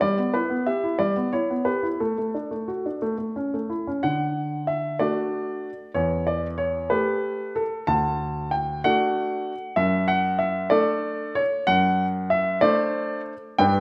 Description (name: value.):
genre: classical-period piano sonatina.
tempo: 58-65 BPM (dotted quarters).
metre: 6/8.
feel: rubato.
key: D major.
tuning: A4 = 445 Hz.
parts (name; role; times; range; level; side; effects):
clear baby grand piano; solo; 0.0-13.8 s; D2 to A5; -24 LUFS; equal; none.
room: moderate recital hall reverb, RT60 1.3 s.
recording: none.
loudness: -25 LUFS.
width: mono.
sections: 0.0-4.0 A section; 4.0-13.8 B section.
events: none.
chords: 0.0 Em/G; 2.0 D/A; 3.0 A; 4.0 D; 6.0 A5/E; 7.9 D; 9.8 D/F#; 11.7 D7/F#.